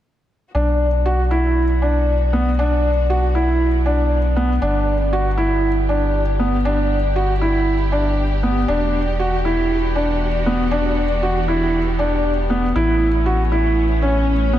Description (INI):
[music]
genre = electronica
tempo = 118 BPM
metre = 4/4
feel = straight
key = B minor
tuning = A4 = 440 Hz
[part]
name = warm symphonic string section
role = sustained chords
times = 0.5-14.6 s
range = E3 to G4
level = -29 LUFS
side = equal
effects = none
[part]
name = felt-muted upright piano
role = riff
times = 0.5-14.6 s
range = B3 to F#4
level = -19 LUFS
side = equal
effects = diffuse ambient delay
[part]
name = round analog bass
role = bass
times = 0.5-14.6 s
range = E1 to B1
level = -19 LUFS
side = equal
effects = none
[sound]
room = moderate lush hall reverb, RT60 2.5 s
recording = dreamy mix soaked in reverb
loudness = -16 LUFS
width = side -12 dB against mid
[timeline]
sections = 0.6-14.6 A section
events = fade-in on string section 0.6-14.6; filter sweep on analog synth bass 0.6-14.6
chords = 0.6 Bm; 4.6 G; 8.7 Em7; 12.8 Aadd9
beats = | 0.55 1.06 1.57 2.08 | 2.58 3.09 3.60 4.11 | 4.62 5.13 5.63 6.14 | 6.65 7.16 7.67 8.18 | 8.69 9.19 9.70 10.21 | 10.72 11.23 11.74 12.24 | 12.75 13.26 13.77 14.28